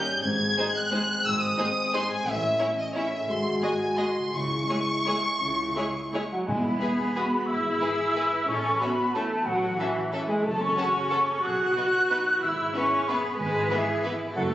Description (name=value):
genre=classical, orchestral ballroom waltz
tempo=160-200 BPM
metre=3/4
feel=rubato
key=C# minor, E major from 6.5 s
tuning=A4 = 440 Hz
part: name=rich chamber violin section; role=melody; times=0.0-14.1 s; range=D#5 to G#6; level=-28 LUFS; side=equal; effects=none
part: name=mellow French horn section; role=sustained chords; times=0.0-6.3 s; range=G3 to F#4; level=-30 LUFS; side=left 1 dB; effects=none
part: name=concert harp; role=arpeggios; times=0.0-14.5 s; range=F#2 to C#5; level=-37 LUFS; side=left 3 dB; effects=none
part: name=dark chamber double bass section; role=bass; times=0.2-14.5 s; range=F#1 to E2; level=-37 LUFS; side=right 1 dB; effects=none
part: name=warm chamber cello section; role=bass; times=0.2-14.5 s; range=G#2 to B4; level=-34 LUFS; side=right 1 dB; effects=none
part: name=rich chamber violin section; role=second line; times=0.6-14.1 s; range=B3 to D#5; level=-36 LUFS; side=left 1 dB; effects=none
part: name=rich chamber viola section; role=accompaniment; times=0.6-14.5 s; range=E3 to F#4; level=-30 LUFS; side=equal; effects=none
part: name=flute section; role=second line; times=6.3-14.5 s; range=E5 to F#6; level=-27 LUFS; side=equal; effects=none
part: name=timpani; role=percussion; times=6.5-7.0 s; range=E2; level=-33 LUFS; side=equal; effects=none
room=wet scoring stage reverb, RT60 2.0 s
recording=recorded on a phone in the room, club reverb, compression, nothing above 8.0 kHz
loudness=-23 LUFS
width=side -13 dB against mid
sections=0.0-6.5 A section; 6.5-14.5 B section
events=none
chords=0.2 G#; 2.3 A; 3.3 G#7; 4.3 C#m; 6.5 E; 7.5 E/G#; 8.5 A; 10.5 F#m; 11.4 B; 12.4 E/G#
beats=| 0.24 0.57 0.92 | 1.25 1.58 1.94 | 2.27 2.60 2.95 | 3.28 3.63 3.99 | 4.34 4.70 5.07 | 5.42 5.77 6.14 | 6.49 6.82 7.16 | 7.49 7.83 8.17 | 8.49 8.81 9.15 | 9.47 9.80 10.13 | 10.45 10.78 11.12 | 11.45 11.77 12.11 | 12.42 12.74 13.07 | 13.39 13.71 14.04 | 14.35